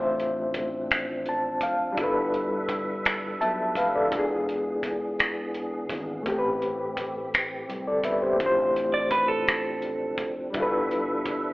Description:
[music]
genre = slow six-eight R&B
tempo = 56 BPM (dotted quarters)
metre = 6/8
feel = straight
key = D dorian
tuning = A4 = 440 Hz
[part]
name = overdriven reed electric piano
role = accompaniment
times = 0.0-11.5 s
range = A2 to A5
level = -26 LUFS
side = left 1 dB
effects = fast tremolo
[part]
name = tonewheel organ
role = sustained chords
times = 0.0-11.5 s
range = E3 to E5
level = -33 LUFS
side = equal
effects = chorus vibrato, slow rotary speaker
[part]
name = sustaining fretless electric bass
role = bass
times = 0.0-11.5 s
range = E1 to C2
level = -38 LUFS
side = equal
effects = none
[part]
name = cloth-damped thuddy drum kit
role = drums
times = 0.2-11.4 s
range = finger snaps, hi-hat, kick drum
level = -28 LUFS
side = equal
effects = none
[part]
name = clean electric guitar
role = second line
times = 8.9-10.3 s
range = A4 to D5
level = -26 LUFS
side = right 2 dB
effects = none
[sound]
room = wet recital hall reverb, RT60 1.3 s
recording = recorded in a church or concert hall, telephone sound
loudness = -24 LUFS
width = side -20 dB against mid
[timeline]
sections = 0.0-11.5 A section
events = reed electric piano fill 0.9-2.0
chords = 0.0 Dm7/A; 2.0 G13; 4.1 E7b9; 6.3 Am7; 8.4 Dm7/A; 10.5 G13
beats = 0.90 | 1.97 3.04 | 4.11 5.18 | 6.26 7.33 | 8.40 9.47 | 10.54

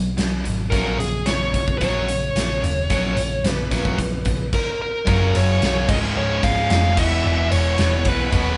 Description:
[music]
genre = hard rock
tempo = 110 BPM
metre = 4/4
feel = straight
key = unclear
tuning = A4 = 440 Hz
[part]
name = distorted electric guitar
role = riff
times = 0.0-8.6 s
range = Db2 to Cb4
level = -30 LUFS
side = equal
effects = overdrive
[part]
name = overdriven electric guitar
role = riff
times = 0.0-8.6 s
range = Db2 to Cb4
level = -30 LUFS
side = equal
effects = spring reverb
[part]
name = hollow-body short-scale picked electric bass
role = bass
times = 0.0-8.6 s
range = Db1 to Cb2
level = -25 LUFS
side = equal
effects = none
[part]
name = big rock drum kit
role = drums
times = 0.2-8.4 s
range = crash cymbal, hi-hat, kick drum, ride cymbal, snare drum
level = -26 LUFS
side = equal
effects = none
[part]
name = bluesy overdriven lead guitar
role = melody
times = 0.7-8.6 s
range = Ab4 to F5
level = -26 LUFS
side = equal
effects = distortion
[part]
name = overdriven tonewheel organ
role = sustained chords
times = 5.1-8.6 s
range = E3 to Eb5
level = -38 LUFS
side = equal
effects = none
[sound]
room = moderate studio reverb, RT60 0.9 s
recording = band playing live in one room, nothing above 10.8 kHz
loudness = -20 LUFS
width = mono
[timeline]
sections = 0.0-5.1 A section; 5.1-8.6 B section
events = none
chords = 0.0 Cb5; 0.7 Gb; 5.1 Gb5; 5.9 Db; 7.0 E5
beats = 0.18 | 0.72 1.26 1.81 2.35 | 2.90 3.44 3.98 4.53 | 5.07 5.61 6.15 6.69 | 7.24 7.78 8.32

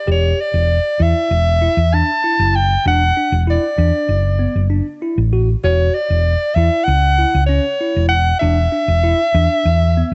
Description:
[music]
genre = progressive instrumental, band music in an uneven meter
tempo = 194 BPM (eighths)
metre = 9/8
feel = straight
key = E dorian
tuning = A4 = 445 Hz
[part]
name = breathy soprano saxophone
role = melody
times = 0.0-10.1 s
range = C#5 to A5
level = -19 LUFS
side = equal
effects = cassette tape
[part]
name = bell-like tine electric piano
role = arpeggios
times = 0.1-10.1 s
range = B3 to G4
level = -26 LUFS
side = equal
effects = none
[part]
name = hollow-body short-scale fingered electric bass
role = bass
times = 0.1-10.1 s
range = E1 to E2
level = -17 LUFS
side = equal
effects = none
[sound]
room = light reverb, small room ambience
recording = home recording on cassette, nothing above 8.0 kHz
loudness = -16 LUFS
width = mono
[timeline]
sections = 0.1-10.1 A section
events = none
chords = 0.1 Em; 1.3 A5/E; 2.9 Bm7/E (rootless); 5.6 F#5/E; 8.4 E7(no3)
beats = | 0.08 0.39 0.69 1.00 1.31 1.62 1.93 2.24 2.55 | 2.86 3.17 3.48 3.79 4.10 4.41 4.71 5.02 5.33 | 5.64 5.95 6.26 6.57 6.88 7.18 7.49 7.80 8.11 | 8.42 8.73 9.04 9.35 9.65 9.96

